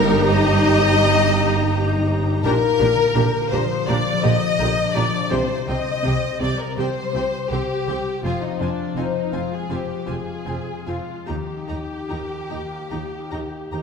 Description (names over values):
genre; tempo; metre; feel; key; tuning
cinematic, emotional film score for orchestra; 81 BPM; 4/4; uneven beats, rubato; unclear; A4 = 440 Hz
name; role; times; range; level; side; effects
rich studio violin section; melody; 0.0-13.8 s; G5 to Bb5; -32 LUFS; left 4 dB; none
warm studio violin section; second line; 0.0-13.8 s; D4 to Eb5; -23 LUFS; left 4 dB; none
warm studio viola section; accompaniment; 0.0-13.8 s; D3 to G4; -26 LUFS; right 2 dB; none
concert harp; arpeggios; 0.0-13.8 s; G2 to C5; -26 LUFS; left 7 dB; none
warm studio cello section; bass; 0.0-13.8 s; Eb2 to C3; -25 LUFS; right 4 dB; none
warm studio double bass section; bass; 0.0-13.8 s; F1 to Eb2; -27 LUFS; right 3 dB; none
timpani; percussion; 0.0-0.6, 5.3-6.4 s; G2 to C3; -33 LUFS; right 2 dB; none
room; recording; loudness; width
wet scoring stage reverb, RT60 2.0 s; minimal, uncompressed stereo recording; -18 LUFS; side -6 dB against mid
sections
0.0-13.8 A section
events
none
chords
0.0 Eb/G; 2.4 Bb6; 5.3 Cm; 8.2 Fm; 11.3 Eb